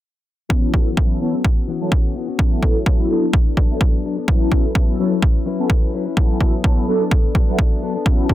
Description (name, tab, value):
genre	filtered disco house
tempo	127 BPM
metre	4/4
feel	swing 54% on 16ths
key	A major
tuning	A4 = 441 Hz
part	mellow synth brass	accompaniment	0.5-8.3 s	F#3 to A4	-22 LUFS	left 1 dB	chorus, phaser, cassette tape, sidechain pumping, low-pass filter
part	direct-recorded clean electric guitar	riff	0.5-8.3 s	E3 to B4	-26 LUFS	left 6 dB	lush chorus, sidechain pumping, low-pass filter
part	electronic kick drum	drums	0.5-8.3 s	none	-16 LUFS	equal	none
part	tambourine	percussion	0.5-8.3 s	none	-76 LUFS	left 4 dB	none
room	light reverb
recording	dense, heavily limited modern master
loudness	-15 LUFS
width	side -14 dB against mid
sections	0.5-8.3 A section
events	filter sweep 0.5-8.3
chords	0.5 A69; 3.1 E9sus4; 4.3 A69; 6.9 E9sus4